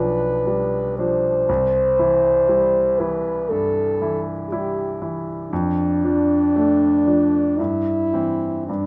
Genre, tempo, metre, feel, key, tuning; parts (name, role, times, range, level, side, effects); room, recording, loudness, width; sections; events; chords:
classical, romantic duo for French horn and grand piano; 59 BPM; 4/4; rubato; C major; A4 = 440 Hz
mellow French horn; melody; 0.0-8.9 s; D4 to C5; -21 LUFS; equal
clear concert grand piano; accompaniment; 0.0-8.9 s; B1 to E4; -26 LUFS; equal
moderate studio reverb, RT60 0.8 s; nothing above 10.6 kHz; -20 LUFS; mono
0.0-8.9 A section
0.0 G7/B; 1.5 C; 5.5 Dm/F; 7.6 C/G